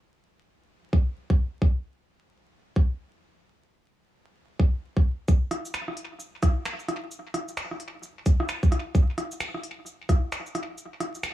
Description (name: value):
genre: future garage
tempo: 131 BPM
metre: 4/4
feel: swing 62% on 16ths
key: none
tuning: none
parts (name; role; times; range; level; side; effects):
- electronic kick drum; drums; 0.9-10.2 s; none; -20 LUFS; equal; none
- organic electronic drum kit; drums; 5.3-11.3 s; finger snaps, hi-hat, rim click, shaker; -32 LUFS; right 1 dB; low-pass filter on perc, low-pass filter on snare, low-pass filter on hats, low-pass filter on room, tape echo
room: little or no reverb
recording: echo-heavy mix, vinyl crackle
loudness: -24 LUFS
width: side -14 dB against mid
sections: 0.0-5.3 A section; 5.3-11.3 B section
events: none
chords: none